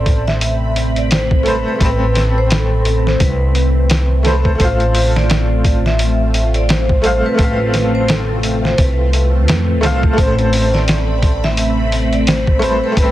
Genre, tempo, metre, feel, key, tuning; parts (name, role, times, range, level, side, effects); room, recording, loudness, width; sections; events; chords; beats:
trip hop; 86 BPM; 4/4; swing 58% on 16ths; A minor; A4 = 440 Hz
vibraphone with medium mallets; melody; 0.0-13.1 s; A4 to E5; -21 LUFS; right 1 dB; tape echo
bright upright piano; accompaniment; 0.0-13.1 s; A3 to F5; -21 LUFS; equal; tremolo, tape echo
string machine, cellos; sustained chords; 0.0-13.1 s; A3 to B5; -22 LUFS; equal; phaser, ensemble chorus
upright bass; bass; 0.0-13.1 s; A1 to F2; -16 LUFS; equal
trip hop sampler-style drum kit; drums; 0.1-13.1 s; hi-hat, kick drum, snare drum; -16 LUFS; equal
studio reverb; dense, heavily limited modern master; -12 LUFS; side -14 dB against mid
0.0-13.1 A section
0.0 Amadd9; 4.6 F/A; 10.2 Amadd9
0.41 1.11 | 1.80 2.50 3.20 3.90 | 4.59 5.29 5.99 6.69 | 7.39 8.08 8.78 9.48 | 10.18 10.87 11.57 12.27 | 12.97